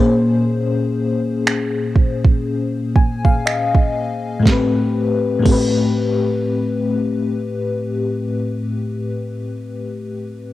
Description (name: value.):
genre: contemporary R&B.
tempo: 60 BPM.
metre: 4/4.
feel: swing 58% on 16ths.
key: unclear.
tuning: A4 = 440 Hz.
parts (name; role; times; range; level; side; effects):
FM electric piano with soft pad layer; accompaniment; 0.0-10.5 s; A2 to Ab5; -18 LUFS; left 3 dB; chorus, tremolo, cassette tape.
smooth R&B drum kit; drums; 1.5-5.8 s; crash cymbal, finger snaps, kick drum, snare drum; -15 LUFS; right 2 dB; overdrive, cassette tape.
room: little or no reverb.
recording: home recording on cassette.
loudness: -16 LUFS.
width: side -15 dB against mid.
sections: 0.0-4.5 A section; 4.5-8.5 B section.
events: FM electric piano fill 2.5-4.5.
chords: 0.0 Bbm9; 4.5 Am9.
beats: | 0.46 1.46 2.46 3.46 | 4.46 5.46 6.46 7.46.